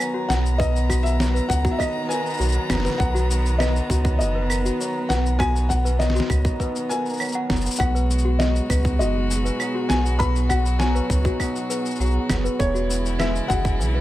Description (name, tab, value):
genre	folktronica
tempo	100 BPM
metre	4/4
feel	straight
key	B major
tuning	A4 = 442 Hz
part	felt-muted upright piano	melody	0.0-14.0 s	C#5 to B5	-28 LUFS	left 2 dB	digital delay, plate reverb
part	small celesta	second line	0.0-14.0 s	F#4 to F#5	-31 LUFS	left 4 dB	tape echo, plate reverb
part	warm string quartet	sustained chords	0.0-14.0 s	B2 to A#5	-31 LUFS	right 1 dB	plate reverb
part	cimbalom	arpeggios	0.0-14.0 s	B2 to A#4	-28 LUFS	equal	digital delay, plate reverb
part	electronic claves, shaker and snare drum	drums	0.0-13.9 s	none	-28 LUFS	equal	overdrive
part	warm sub bass	bass	0.3-14.0 s	E1 to C#2	-22 LUFS	equal	none
part	electronic kick drum	drums	0.6-13.8 s	none	-25 LUFS	equal	overdrive
room	light reverb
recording	none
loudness	-19 LUFS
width	side -15 dB against mid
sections	0.0-14.0 A section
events	none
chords	0.0 Bmaj7; 7.8 G#m7; 12.6 E6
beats	0.00 | 0.60 1.20 1.80 2.40 | 3.00 3.60 4.20 4.80 | 5.40 6.00 6.60 7.20 | 7.80 8.40 9.00 9.60 | 10.20 10.80 11.40 12.00 | 12.60 13.20 13.80